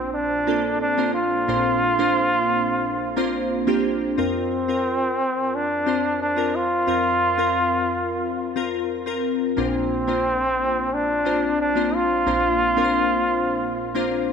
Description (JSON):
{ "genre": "pop", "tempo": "89 BPM", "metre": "4/4", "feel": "straight", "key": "Bb major", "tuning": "A4 = 440 Hz", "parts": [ { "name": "bright trombone", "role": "melody", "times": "0.0-14.3 s", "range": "C4 to F4", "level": "-22 LUFS", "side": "right 1 dB", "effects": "none" }, { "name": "glassy digital keys", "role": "accompaniment", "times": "0.0-14.3 s", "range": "Bb1 to C5", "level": "-23 LUFS", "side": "left 1 dB", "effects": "chorus" } ], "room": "moderate lush hall reverb, RT60 2.9 s", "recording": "none", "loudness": "-19 LUFS", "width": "side -6 dB against mid", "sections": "0.0-14.3 A section", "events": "none", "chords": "0.0 Bbadd9; 4.2 Fsus4; 9.6 Bbadd9", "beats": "0.14 0.81 | 1.48 2.16 2.83 3.51 | 4.18 4.86 5.53 6.20 | 6.88 7.55 8.23 8.90 | 9.57 10.25 10.92 11.60 | 12.27 12.95 13.62 14.29" }